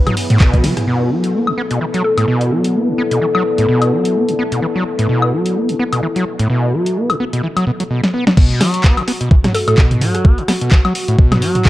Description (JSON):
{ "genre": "acid house", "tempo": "128 BPM", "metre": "4/4", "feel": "swing 56% on 16ths", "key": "B dorian", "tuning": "A4 = 439 Hz", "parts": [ { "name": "warm analog pad", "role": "sustained chords", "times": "0.0-11.7 s", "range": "F#4 to B4", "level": "-23 LUFS", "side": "left 2 dB", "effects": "chorus, sidechain pumping" }, { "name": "deep dark ambient pad", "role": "texture", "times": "0.0-7.9 s", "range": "B3 to E5", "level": "-22 LUFS", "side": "left 1 dB", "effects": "chorus, built-in reverb, sidechain pumping" }, { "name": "overdriven acid bass", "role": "riff", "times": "0.1-11.7 s", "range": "A2 to D4", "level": "-17 LUFS", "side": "equal", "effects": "distortion, analog chorus, vintage 12-bit sampler grit, tape echo" }, { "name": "punchy analog drum machine", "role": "drums", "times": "0.1-11.7 s", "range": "crash cymbal, handclaps, hi-hat, ride cymbal, rim click, snare drum, toms, woodblock", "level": "-18 LUFS", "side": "left 1 dB", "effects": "none" }, { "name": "electronic kick drum", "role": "drums", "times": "0.4-0.6, 8.4-11.7 s", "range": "none", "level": "-10 LUFS", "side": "equal", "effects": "overdrive" }, { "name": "hollow square pluck", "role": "melody", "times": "2.0-2.2, 9.5-9.7 s", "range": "A4", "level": "-22 LUFS", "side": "equal", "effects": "chorus, cassette tape, tape echo" } ], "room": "moderate plate reverb, RT60 2.0 s", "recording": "dark, warm production", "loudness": "-12 LUFS", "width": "side -16 dB against mid", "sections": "0.9-8.4 A section; 8.4-11.7 B section", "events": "band accent 0.4; drum fill 0.5-0.9, 8.0-8.4; filter sweep on analog synth pad 0.9-8.4; drop 8.4-11.7", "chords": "0.0 B5; 0.9 Bm7; 8.4 B5" }